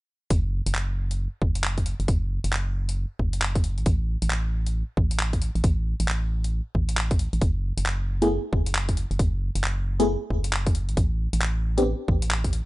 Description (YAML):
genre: UK garage, two-step garage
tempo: 135 BPM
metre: 4/4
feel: swing 62% on 16ths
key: F# minor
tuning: A4 = 440 Hz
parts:
  - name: organ-like FM bass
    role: bass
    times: 0.3-12.6 s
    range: F#1 to A1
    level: -25 LUFS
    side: equal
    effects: none
  - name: breakbeat sampler-style drum kit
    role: drums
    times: 0.3-12.6 s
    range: handclaps, hi-hat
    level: -29 LUFS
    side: equal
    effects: none
  - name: electronic kick drum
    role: drums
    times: 0.3-12.5 s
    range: none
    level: -23 LUFS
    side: equal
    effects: none
  - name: FM electric piano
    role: stabs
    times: 8.2-11.8 s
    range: A3 to G#4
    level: -24 LUFS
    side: left 1 dB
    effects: chorus, phaser, digital delay
room: digital ambience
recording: nothing above 10.9 kHz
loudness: -23 LUFS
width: side -18 dB against mid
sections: 0.3-12.7 A section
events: filter sweep on FM bass 0.3-12.7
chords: none